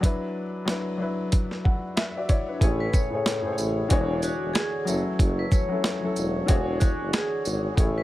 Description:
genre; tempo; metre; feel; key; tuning
hip hop, boom-bap hip-hop; 93 BPM; 4/4; swing 59% on 16ths; unclear; A4 = 440 Hz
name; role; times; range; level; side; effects
warm upright piano; accompaniment; 0.0-8.0 s; A2 to F#5; -29 LUFS; left 2 dB; cassette tape
boom bap sampler-style drum kit; drums; 0.0-8.0 s; hi-hat, kick drum, shaker, snare drum; -23 LUFS; equal; none
percussive tonewheel organ; sustained chords; 2.6-8.0 s; C#3 to C#5; -36 LUFS; right 2 dB; overdrive, stopped rotary speaker
warm tuba; bass; 2.6-8.0 s; E1 to A1; -28 LUFS; equal; none
vibraphone with medium hard mallets; melody; 2.8-8.0 s; F#4 to C#5; -32 LUFS; left 1 dB; digital delay
tambourine; percussion; 2.9-7.6 s; none; -38 LUFS; right 5 dB; none
room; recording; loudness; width
small room ambience; none; -23 LUFS; side -16 dB against mid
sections
0.0-2.6 A section; 2.6-8.0 B section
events
break 0.0-2.6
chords
0.0 D6/F#; 2.6 Amaj7; 3.9 E13; 4.9 F#m7; 6.5 E13

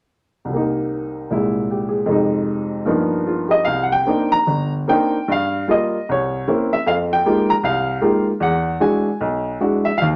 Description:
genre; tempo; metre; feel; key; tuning
solo jazz; 152 BPM; 4/4; swing 65% on 8ths, rubato; C minor; A4 = 440 Hz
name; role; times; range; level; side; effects
warm upright piano; solo; 0.5-10.2 s; G1 to Bb5; -19 LUFS; equal; none
room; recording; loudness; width
moderate studio reverb, RT60 0.6 s; none; -19 LUFS; mono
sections
0.5-3.7 A section; 3.7-10.2 B section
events
none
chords
0.5 Cm7; 1.3 C7b13; 2.1 Fm7; 2.9 G7alt; 3.7 Cm9; 5.3 Gm7; 6.1 C7b9; 6.9 Fm11; 8.4 E9

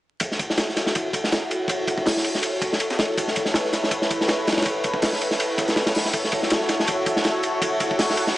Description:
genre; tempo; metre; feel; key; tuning
drum and bass, jungle; 162 BPM; 4/4; swing 55% on 16ths; F# minor; A4 = 440 Hz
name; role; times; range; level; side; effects
lush unison pad; sustained chords; 0.2-8.4 s; E4 to C#5; -25 LUFS; equal; chorus
crunchy breakbeat drum kit; drums; 0.2-8.4 s; hi-hat, kick drum, ride cymbal, snare drum; -22 LUFS; equal; high-pass filter on kick, high-pass filter on cymbals, high-pass filter on hats, high-pass filter on snare, high-pass filter on room
crunchy breakbeat drum kit; drums; 0.2-8.4 s; hi-hat, snare drum; -34 LUFS; equal; none
room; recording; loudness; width
moderate lush hall reverb, RT60 2.1 s; dry, gritty hardware recording, vinyl crackle, nothing above 10.6 kHz; -20 LUFS; side -16 dB against mid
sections
0.2-8.4 A section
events
filter sweep on analog synth pad 0.2-8.4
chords
0.2 F#m7; 3.2 B9sus4; 6.1 F#m7

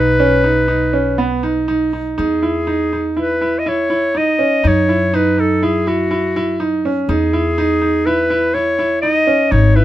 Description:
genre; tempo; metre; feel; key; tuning
contemporary instrumental, chamber music in an uneven meter; 122 BPM; 5/4; straight; unclear; A4 = 442 Hz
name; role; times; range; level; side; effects
clear clarinet; melody; 0.0-9.8 s; F#4 to D#5; -17 LUFS; left 1 dB; none
clear baby grand piano; arpeggios; 0.0-9.8 s; B3 to E4; -17 LUFS; right 2 dB; none
upright bass; bass; 0.0-9.8 s; G#1 to F#2; -19 LUFS; left 1 dB; none
room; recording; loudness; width
little or no reverb; close, detailed microphones; -13 LUFS; side -13 dB against mid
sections
0.0-2.2 A section; 2.2-9.8 B section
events
none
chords
0.0 B; 2.2 Emaj7; 4.6 F#7(no3); 7.1 Emaj7

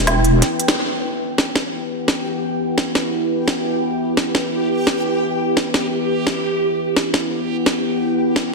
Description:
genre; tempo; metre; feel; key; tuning
half-time drum and bass; 172 BPM; 4/4; half-time; E minor; A4 = 440 Hz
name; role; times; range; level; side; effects
deep dark ambient pad; sustained chords; 0.0-8.5 s; E4 to G5; -21 LUFS; equal; chorus, built-in reverb
organic electronic drum kit; drums; 0.1-8.4 s; hi-hat, snare drum; -20 LUFS; equal; studio reverb, soft clipping on snare
backwards swelling texture; texture; 2.0-8.5 s; G4; -24 LUFS; right 1 dB; built-in reverb
room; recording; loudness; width
wet lush hall reverb, RT60 1.8 s; dense, heavily limited modern master; -17 LUFS; side -2 dB against mid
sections
0.8-8.5 A section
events
band accent 0.7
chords
0.0 E5

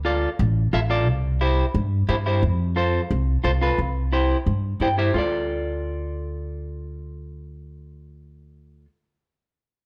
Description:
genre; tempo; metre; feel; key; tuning
latin, cumbia; 176 BPM; 4/4; straight; D minor; A4 = 440 Hz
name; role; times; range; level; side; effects
clean electric guitar; accompaniment; 0.0-8.9 s; E4 to G5; -27 LUFS; equal; none
upright bass; bass; 0.0-8.9 s; A1 to G2; -26 LUFS; equal; none
room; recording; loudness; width
light reverb; dark, warm production; -23 LUFS; mono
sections
0.0-5.1 A section; 5.1-7.9 B section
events
clean electric guitar fill 4.6-5.1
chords
0.0 Dm; 1.1 C; 2.4 F; 3.8 C; 5.1 Dm

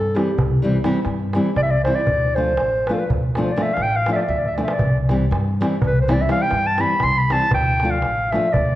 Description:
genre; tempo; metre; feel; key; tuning
balkan folk, Balkan wedding band; 242 BPM (eighths); 11/8; straight; C major; A4 = 440 Hz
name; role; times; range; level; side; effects
mellow clarinet; melody; 0.0-8.8 s; G4 to C6; -20 LUFS; equal; none
upright bass; bass; 0.0-8.8 s; A1 to G2; -23 LUFS; equal; none
nylon-string guitar; accompaniment; 0.1-8.5 s; E3 to F4; -23 LUFS; left 1 dB; none
darbuka; percussion; 0.2-8.7 s; none; -24 LUFS; right 1 dB; none
room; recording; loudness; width
wet recital hall reverb, RT60 1.5 s; worn, warbling old tape, cassette tape, warbly pitch drift; -17 LUFS; side -14 dB against mid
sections
0.0-8.8 A section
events
clarinet solo 0.0-8.8; drum fill 4.3-4.8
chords
0.0 C; 2.1 Dm; 4.8 C; 7.5 Dm

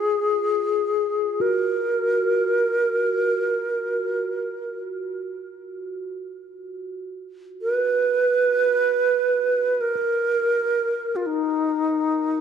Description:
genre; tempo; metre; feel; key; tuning
world meditative, free-time meditation music; free time; none; none; unclear; A4 = 441 Hz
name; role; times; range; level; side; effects
alto flute; melody; 0.0-12.4 s; Eb4 to Cb5; -20 LUFS; right 1 dB; tape echo
bronze singing bowl; texture; 0.0-12.4 s; F4 to Bb4; -31 LUFS; right 3 dB; none
room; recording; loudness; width
wet scoring stage reverb, RT60 1.6 s, small room ambience; dark, warm production; -20 LUFS; side -7 dB against mid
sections
0.0-12.4 A section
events
none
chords
none

